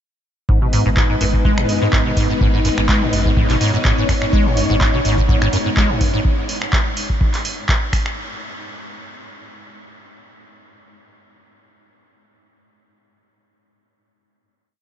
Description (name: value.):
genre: acid house.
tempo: 125 BPM.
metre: 4/4.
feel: swing 54% on 16ths.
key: G# minor.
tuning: A4 = 445 Hz.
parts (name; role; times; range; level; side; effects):
string machine, full ensemble; sustained chords; 0.5-6.2 s; G#3 to C#5; -23 LUFS; left 1 dB; ensemble chorus, sidechain pumping.
acid bass, square; riff; 0.5-6.2 s; F#2 to G#3; -21 LUFS; equal; wide subtle chorus, sidechain pumping, analog delay.
warm sub bass; bass; 0.5-5.9 s; G#1; -22 LUFS; equal; sidechain pumping.
electronic kick drum; drums; 0.5-8.0 s; none; -18 LUFS; equal; overdrive.
booming analog drum machine; drums; 0.7-8.1 s; finger snaps, handclaps, hi-hat; -24 LUFS; right 1 dB; overdrive.
room: light reverb.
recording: nothing above 7.6 kHz.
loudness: -14 LUFS.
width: side -10 dB against mid.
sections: 0.5-8.2 groove.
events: none.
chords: 0.5 G#m.